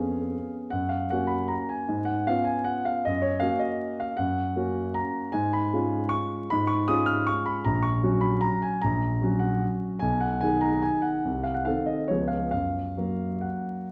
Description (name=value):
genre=classical, piano waltz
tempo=126-164 BPM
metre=3/4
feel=rubato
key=F# major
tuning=A4 = 440 Hz
part: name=warm concert grand piano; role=solo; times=0.0-13.9 s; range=A#1 to E#6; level=-27 LUFS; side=equal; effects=none
room=wet recital hall reverb, RT60 1.5 s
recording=vinyl crackle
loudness=-27 LUFS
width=mono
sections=0.0-13.9 A section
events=none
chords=0.0 C#7/E#; 0.7 F#; 1.9 C#7/G#; 3.1 F#; 5.3 C#7/G#; 7.6 F#/A#; 10.0 G#m/B; 11.2 Cdim7; 12.1 C#7; 12.5 F#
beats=0.33 | 0.71 1.10 1.50 | 1.89 2.28 2.68 | 3.06 3.44 3.83 | 4.20 4.57 4.96 | 5.33 5.71 6.10 | 6.49 6.87 7.26 | 7.65 8.03 8.43 | 8.83 9.21 9.62 | 10.03 10.42 10.83 | 11.25 11.65 12.09 | 12.53 12.97 13.45 | 13.90